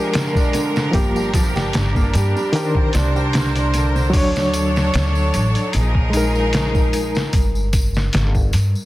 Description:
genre	trip hop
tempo	75 BPM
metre	4/4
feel	swing 54% on 16ths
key	unclear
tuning	A4 = 440 Hz
part	overdriven reed electric piano	accompaniment	0.0-7.3 s	Eb3 to C#5	-23 LUFS	left 1 dB	fast tremolo, tape echo
part	clear studio string section	sustained chords	0.0-7.3 s	F3 to C#5	-25 LUFS	equal	none
part	felt-muted upright piano	arpeggios	0.0-4.2 s	D3 to G4	-24 LUFS	right 2 dB	vintage 12-bit sampler grit, tape echo
part	trip hop sampler-style drum kit	drums	0.1-8.7 s	hi-hat, kick drum, snare drum	-20 LUFS	equal	studio reverb
part	tambourine	percussion	0.1-8.9 s	none	-34 LUFS	left 1 dB	none
part	upright bass	bass	0.9-8.7 s	G1 to G2	-20 LUFS	equal	tube saturation
room	small room reverb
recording	dense, heavily limited modern master, vinyl crackle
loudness	-16 LUFS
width	side -16 dB against mid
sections	0.0-8.9 A section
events	none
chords	0.0 Bb5; 0.9 Gm7; 2.5 Cm9; 4.1 Dmaj7; 5.7 Bb7sus4; 7.3 N.C.

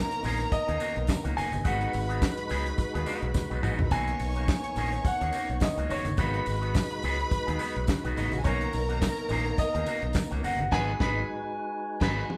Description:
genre	disco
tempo	106 BPM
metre	4/4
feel	swing 56% on 16ths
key	G# minor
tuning	A4 = 439 Hz
part	warm concert grand piano	melody	0.0-12.4 s	B4 to G#5	-36 LUFS	equal	none
part	warm studio violin section	second line	0.0-12.2 s	D#4 to C#6	-38 LUFS	equal	none
part	percussive tonewheel organ	sustained chords	0.0-12.4 s	G#3 to B4	-40 LUFS	equal	overdrive, chorus vibrato, slow rotary speaker
part	electric guitar with an envelope filter	accompaniment	0.1-12.2 s	D#3 to G#4	-37 LUFS	equal	none
part	warm soul drum kit	drums	0.1-12.4 s	crash cymbal, handclaps, hi-hat, kick drum, snare drum, toms	-32 LUFS	equal	none
part	modern bright fingered electric bass	bass	0.2-12.2 s	F#1 to D#2	-35 LUFS	equal	none
part	congas	percussion	0.2-10.7 s	none	-43 LUFS	equal	none
part	tambourine	percussion	0.2-10.6 s	none	-51 LUFS	equal	none
room	moderate large studio reverb, RT60 1.1 s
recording	band playing live in one room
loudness	-29 LUFS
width	mono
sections	0.0-12.4 A section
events	drum fill 3.4-3.9, 11.9-12.4; band accent 10.7-12.4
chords	0.0 Bmaj9; 1.7 G#m7; 3.9 Bmaj9; 6.2 G#m7; 8.5 Bmaj9; 10.7 G#m7

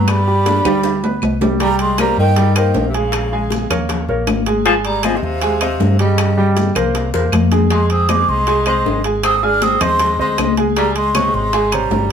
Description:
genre	Afro-Cuban jazz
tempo	157 BPM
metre	4/4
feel	straight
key	C minor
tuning	A4 = 440 Hz
part	breathy mellow concert flute	melody	0.0-12.1 s	Eb5 to F6	-19 LUFS	right 3 dB	none
part	breathy tenor saxophone	second line	0.0-12.1 s	C3 to D4	-22 LUFS	left 6 dB	none
part	warm baby grand piano	accompaniment	0.0-12.0 s	C3 to Ab5	-20 LUFS	right 2 dB	none
part	hollow-body short-scale fingered electric bass	bass	0.0-12.1 s	G1 to G2	-19 LUFS	equal	none
part	bongos	percussion	0.1-12.1 s	none	-26 LUFS	left 4 dB	none
part	claves	percussion	0.1-11.9 s	none	-27 LUFS	left 5 dB	none
part	congas	percussion	0.1-12.1 s	none	-24 LUFS	left 7 dB	none
part	timbales	percussion	0.1-12.1 s	none	-23 LUFS	right 2 dB	none
room	moderate studio reverb, RT60 0.7 s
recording	band playing live in one room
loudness	-13 LUFS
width	side -7 dB against mid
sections	0.0-1.6 A section; 1.6-12.1 B section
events	drum fill 0.7-1.6, 6.9-7.7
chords	0.1 G; 1.6 Cm7; 3.1 Bbm7; 3.9 Eb5; 4.7 Ab6; 6.2 Gdim; 6.9 C7; 7.7 Fm7; 9.2 Ab; 10.8 Db5

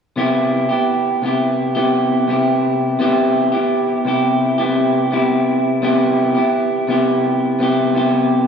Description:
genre	indie pop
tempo	85 BPM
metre	4/4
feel	straight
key	unclear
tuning	A4 = 440 Hz
part	electric guitar through a small old amp	solo	0.2-8.5 s	C3 to G4	-14 LUFS	equal	warbly pitch drift
room	wet church reverb, RT60 3.4 s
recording	recorded in a church or concert hall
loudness	-14 LUFS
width	side -6 dB against mid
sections	0.2-5.8 A section; 5.8-8.5 B section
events	none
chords	0.2 Cmaj7

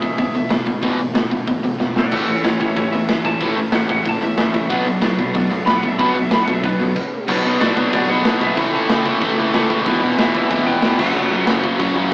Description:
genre	punk rock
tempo	186 BPM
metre	4/4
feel	straight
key	B minor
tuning	A4 = 443 Hz
part	lightly driven lead guitar	melody	0.0-11.4 s	G#4 to B5	-22 LUFS	equal	none
part	cranked stack guitar	riff	0.0-12.1 s	E2 to B3	-21 LUFS	left 1 dB	overdrive
part	overdriven electric guitar	riff	0.0-12.1 s	E2 to B3	-22 LUFS	right 1 dB	none
part	picked electric bass	bass	0.0-12.1 s	E1 to F#2	-30 LUFS	equal	none
part	raw garage drum kit	drums	0.0-11.9 s	crash cymbal, hi-hat, kick drum, snare drum	-20 LUFS	equal	none
part	distorted electric guitar	riff	2.1-12.1 s	F#2 to E4	-24 LUFS	equal	distortion
room	light reverb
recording	rough rehearsal-room recording, tube saturation, AM radio sound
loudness	-15 LUFS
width	side -24 dB against mid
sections	0.0-7.3 A section; 7.3-12.1 B section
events	lead electric guitar solo 0.0-7.3; drum fill 1.8-2.1; stop 7.0-7.3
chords	0.0 E; 2.1 A; 4.7 Bm; 8.6 A/C#; 9.9 Em; 11.0 F#m

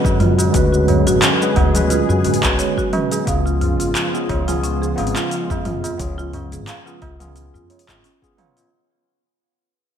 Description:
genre	organic downtempo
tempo	88 BPM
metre	4/4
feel	swing 55% on 16ths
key	unclear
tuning	A4 = 439 Hz
part	tine electric piano	accompaniment	0.0-8.7 s	F#3 to C#5	-23 LUFS	right 2 dB	medium stereo tremolo, sidechain pumping, digital delay
part	warm analog pad	sustained chords	0.0-8.7 s	C#3 to G#4	-24 LUFS	left 1 dB	chorus, sidechain pumping
part	marimba with medium mallets	arpeggios	0.0-8.7 s	C#4 to F#5	-23 LUFS	right 1 dB	digital delay
part	upright bass	bass	0.0-8.0 s	G#1 to F#2	-21 LUFS	left 1 dB	none
part	electronic kick drum	drums	0.0-8.4 s	none	-23 LUFS	left 1 dB	overdrive, studio reverb
part	tabla	percussion	0.0-8.7 s	none	-26 LUFS	right 1 dB	none
part	bronze singing bowl	texture	0.0-8.7 s	B4	-33 LUFS	left 2 dB	none
part	deep house drum kit	drums	0.1-8.7 s	cabasa, handclaps, hi-hat, toms	-23 LUFS	equal	overdrive, studio reverb, gated reverb
room	moderate lush hall reverb, RT60 1.8 s, small room ambience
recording	bright 1980s-style digital production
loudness	-15 LUFS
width	side -8 dB against mid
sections	0.0-8.7 A section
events	fade-out 1.5-8.7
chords	0.0 D6; 3.3 C#7

